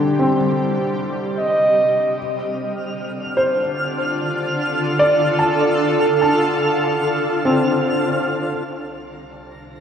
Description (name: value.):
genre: ambient.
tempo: 74 BPM.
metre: 4/4.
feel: straight.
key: unclear.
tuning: A4 = 440 Hz.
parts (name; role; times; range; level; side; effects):
mellow flugelhorn; melody; 0.0-2.1 s; G4 to Eb5; -20 LUFS; right 2 dB; shimmer reverb, ping-pong delay.
shimmering ambient pad; sustained chords; 0.0-9.8 s; C3 to Bb4; -21 LUFS; right 1 dB; chorus, built-in reverb, shimmer reverb.
felt-muted upright piano; arpeggios; 0.0-9.8 s; D3 to A5; -20 LUFS; left 1 dB; shimmer reverb, ping-pong delay.
twinkling granular texture; texture; 2.8-9.8 s; Bb5 to F6; -27 LUFS; right 1 dB; built-in reverb, shimmer reverb.
warm studio double bass section; bass; 8.7-9.8 s; C2; -47 LUFS; equal; none.
room: wet concert hall reverb, RT60 2.2 s.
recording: worn, warbling old tape, cassette tape, warbly pitch drift.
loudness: -16 LUFS.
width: side -8 dB against mid.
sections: 0.0-8.7 A section; 8.7-9.8 B section.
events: fade-in on ambient pad 0.0-8.7.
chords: 0.0 Cm; 2.2 Dm; 8.7 C7(no3).